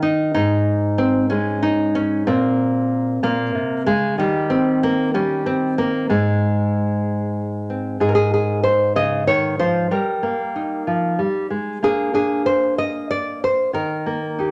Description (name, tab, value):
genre	folk, solo fingerstyle acoustic guitar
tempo	63 BPM (dotted quarters)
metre	6/8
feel	straight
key	Ab major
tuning	A4 = 437 Hz
part	nylon-string guitar	solo	0.0-14.5 s	Ab2 to Eb5	-20 LUFS	equal	none
room	moderate large studio reverb, RT60 1.2 s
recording	none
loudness	-20 LUFS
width	mono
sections	0.0-8.0 A section; 8.0-14.5 B section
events	none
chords	0.0 N.C.; 2.3 Bbmadd9; 4.2 Eb; 6.1 Ab; 8.0 Ab5; 9.9 Eb/G; 11.8 Bb; 13.7 Eb